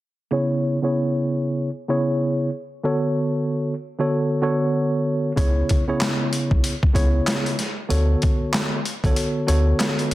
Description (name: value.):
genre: hip hop, boom-bap hip-hop.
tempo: 95 BPM.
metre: 4/4.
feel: swing 60% on 16ths.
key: unclear.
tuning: A4 = 439 Hz.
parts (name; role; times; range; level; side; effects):
mellow tine electric piano; accompaniment; 0.3-10.1 s; C#3 to C#5; -21 LUFS; equal; medium stereo tremolo, cassette tape, high-pass filter, low-pass filter.
soft dub sub bass; bass; 5.4-10.1 s; B1 to D2; -19 LUFS; equal; none.
boom bap sampler-style drum kit; drums; 5.4-10.1 s; handclaps, hi-hat, kick drum, snare drum; -21 LUFS; equal; none.
room: light reverb.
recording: dense, heavily limited modern master.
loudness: -19 LUFS.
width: side -16 dB against mid.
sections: 0.3-10.1 A section.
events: filter sweep on tine electric piano 0.3-10.1; kick muted 9.2-10.1.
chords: 0.3 C#m7; 2.9 Bm7/D; 5.4 C#m7; 7.9 Bm7.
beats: | 0.32 0.95 1.59 2.22 | 2.85 3.48 4.11 4.74 | 5.38 6.01 6.64 7.27 | 7.90 8.53 9.16 9.80.